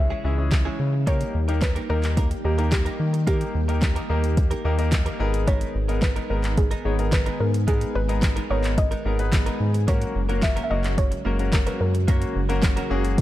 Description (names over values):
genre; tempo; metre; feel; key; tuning
dance-pop; 109 BPM; 4/4; straight; G# minor; A4 = 440 Hz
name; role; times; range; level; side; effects
soft round pluck; melody; 0.0-12.6 s; G4 to E5; -31 LUFS; equal; chorus, tape echo
clear concert grand piano; accompaniment; 0.0-13.2 s; G#3 to A#5; -30 LUFS; left 4 dB; sidechain pumping
ensemble organ-string; sustained chords; 0.0-13.2 s; C#3 to G#4; -32 LUFS; equal; phaser, ensemble chorus, sidechain pumping
round analog bass; bass; 0.0-13.2 s; F#1 to D#3; -24 LUFS; equal; sidechain pumping
direct-recorded clean electric guitar; riff; 0.1-13.2 s; G#3 to A#4; -34 LUFS; right 4 dB; lush chorus
smooth R&B drum kit; drums; 0.5-13.2 s; handclaps, hi-hat, kick drum, snare drum; -23 LUFS; equal; none
room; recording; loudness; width
little or no reverb; dark, warm production; -20 LUFS; side -14 dB against mid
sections
0.0-13.2 A section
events
none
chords
0.0 C#m; 1.1 D#; 5.2 G#madd9; 9.9 F#